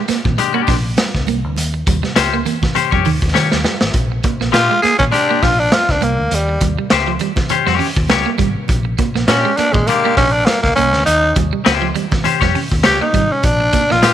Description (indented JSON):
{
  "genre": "funk",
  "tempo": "101 BPM",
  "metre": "4/4",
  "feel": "swing 56% on 16ths",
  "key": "unclear",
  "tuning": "A4 = 440 Hz",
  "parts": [
    { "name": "electric guitar at the edge of break-up", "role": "riff", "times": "0.0-14.1 s", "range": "Eb3 to D4", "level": "-23 LUFS", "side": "right 11 dB", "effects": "none" },
    { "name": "vintage muted fingered electric bass", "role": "bass", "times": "0.1-14.1 s", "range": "Ab1 to Eb3", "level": "-20 LUFS", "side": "equal", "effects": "none" },
    { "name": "raw garage drum kit", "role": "drums", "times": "0.1-14.1 s", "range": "hi-hat, kick drum, snare drum", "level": "-18 LUFS", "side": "equal", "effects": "none" },
    { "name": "tambourine", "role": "percussion", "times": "0.1-3.5, 13.7-14.1 s", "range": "none", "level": "-34 LUFS", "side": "left 12 dB", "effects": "none" },
    { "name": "congas", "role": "percussion", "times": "0.2-14.1 s", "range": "none", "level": "-27 LUFS", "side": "right 8 dB", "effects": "none" },
    { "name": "semi-hollow electric guitar", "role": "accompaniment", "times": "0.4-14.1 s", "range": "Ab3 to Db5", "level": "-19 LUFS", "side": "left 11 dB", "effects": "none" },
    { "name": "growling tenor saxophone", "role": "melody", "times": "4.5-14.1 s", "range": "G3 to Ab4", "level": "-15 LUFS", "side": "equal", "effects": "none" }
  ],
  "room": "light reverb, studio ambience",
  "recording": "1960s-style stereo with parts hard left and right",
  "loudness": "-13 LUFS",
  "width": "side -11 dB against mid",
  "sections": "0.0-3.9 A section; 3.9-14.1 B section",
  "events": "drum fill 3.3-3.9; tenor saxophone solo 3.9-14.1",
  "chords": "0.0 Bb13; 1.6 Eb13; 3.9 Bb13; 6.3 Eb13; 8.7 Bb13; 11.1 Eb13; 13.4 Bb13",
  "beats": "0.38 0.97 | 1.57 2.16 2.75 3.35 | 3.94 4.54 5.13 5.72 | 6.32 6.91 7.51 8.10 | 8.69 9.29 9.88 10.47 | 11.07 11.66 12.25 12.85 | 13.44 14.03"
}